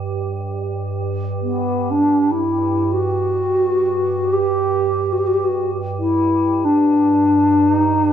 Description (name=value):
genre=world meditative, free-time meditation music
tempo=free time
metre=none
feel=none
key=G major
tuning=A4 = 440 Hz
part: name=icy glass pad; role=drone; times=0.0-8.1 s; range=G2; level=-24 LUFS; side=right 3 dB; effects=chorus, built-in reverb
part: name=bright bass flute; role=melody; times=1.4-8.1 s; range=B3 to G4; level=-16 LUFS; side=equal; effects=none
room=wet studio reverb, RT60 0.6 s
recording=worn, warbling old tape, cassette tape, warbly pitch drift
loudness=-16 LUFS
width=side -9 dB against mid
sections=0.1-8.1 A section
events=none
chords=none